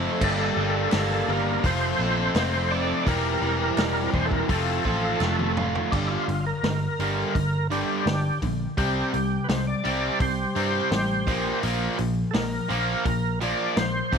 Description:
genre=classic rock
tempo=84 BPM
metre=4/4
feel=straight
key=G dorian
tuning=A4 = 441 Hz
part: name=string machine, full ensemble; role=sustained chords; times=0.0-5.9 s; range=Bb3 to A5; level=-36 LUFS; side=right 1 dB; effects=ensemble chorus
part: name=distorted electric guitar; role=riff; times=0.0-14.2 s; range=F2 to G4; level=-29 LUFS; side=left 13 dB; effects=distortion
part: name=overdriven semi-hollow guitar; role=riff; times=0.0-14.2 s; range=F2 to A4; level=-29 LUFS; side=right 10 dB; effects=none
part: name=picked electric bass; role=bass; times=0.0-14.2 s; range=E1 to G2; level=-29 LUFS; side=equal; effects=none
part: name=overdriven tonewheel organ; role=melody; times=0.2-14.2 s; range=D4 to D5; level=-28 LUFS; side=equal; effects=slow rotary speaker, chorus vibrato, slapback echo
part: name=vintage drum kit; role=drums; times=0.2-14.2 s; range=crash cymbal, hi-hat, kick drum, snare drum, toms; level=-29 LUFS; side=equal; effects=none
part: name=group handclap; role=percussion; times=0.9-5.4 s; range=none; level=-39 LUFS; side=right 15 dB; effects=none
room=studio reverb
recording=1960s-style stereo with parts hard left and right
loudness=-22 LUFS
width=side -6 dB against mid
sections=0.0-5.9 A section; 5.9-14.2 B section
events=drum fill 5.2-5.9; tonewheel organ solo 5.9-14.2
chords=0.2 Gmadd9; 1.6 F; 3.1 C/E; 4.5 F; 5.9 Gm; 8.8 C5; 11.3 Bb5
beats=| 0.22 0.93 1.64 2.36 | 3.07 3.78 4.50 5.21 | 5.92 6.64 7.35 8.06 | 8.78 9.49 10.21 10.92 | 11.63 12.35 13.06 13.78

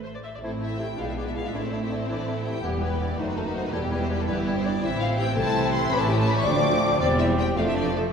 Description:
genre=quick classical-period movement for symphony orchestra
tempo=109 BPM (dotted quarters)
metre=6/8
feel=rubato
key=A minor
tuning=A4 = 440 Hz
part: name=rich studio violin section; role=melody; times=0.0-8.0 s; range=G4 to D6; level=-32 LUFS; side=left 4 dB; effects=none
part: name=rich studio viola section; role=accompaniment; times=0.0-8.1 s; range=D#3 to E5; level=-31 LUFS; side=equal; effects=none
part: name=rich studio double bass section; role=bass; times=0.0-8.1 s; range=E1 to A2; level=-30 LUFS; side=right 1 dB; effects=none
part: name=clear studio violin section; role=second line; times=0.1-8.1 s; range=A3 to C5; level=-33 LUFS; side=left 2 dB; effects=none
part: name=clear clarinet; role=second line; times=0.4-8.1 s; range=D#4 to G4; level=-37 LUFS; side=left 1 dB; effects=none
part: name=small flute group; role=second line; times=0.4-8.1 s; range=G4 to D6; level=-34 LUFS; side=right 1 dB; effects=none
part: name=warm bassoon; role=accompaniment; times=0.4-8.1 s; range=G3 to C#4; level=-32 LUFS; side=equal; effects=none
part: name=mellow French horn section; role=sustained chords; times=0.4-8.1 s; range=G3 to D5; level=-31 LUFS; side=left 3 dB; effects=none
part: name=warm studio cello section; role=bass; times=0.4-8.1 s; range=D2 to A3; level=-31 LUFS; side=right 3 dB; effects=none
room=wet concert hall reverb, RT60 1.6 s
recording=heard from further back in the room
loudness=-22 LUFS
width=side -6 dB against mid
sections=0.4-8.1 A section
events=none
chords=0.4 Am; 1.0 E7/B; 1.5 Am; 2.6 Em; 3.2 B7b9/F#; 3.7 Em; 4.8 Am; 5.9 A7; 6.5 Dm7; 7.0 C/E; 7.6 Dm/F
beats=| 0.43 0.98 | 1.54 2.09 | 2.65 3.19 | 3.74 4.28 | 4.83 5.37 | 5.92 6.46 | 7.01 7.57

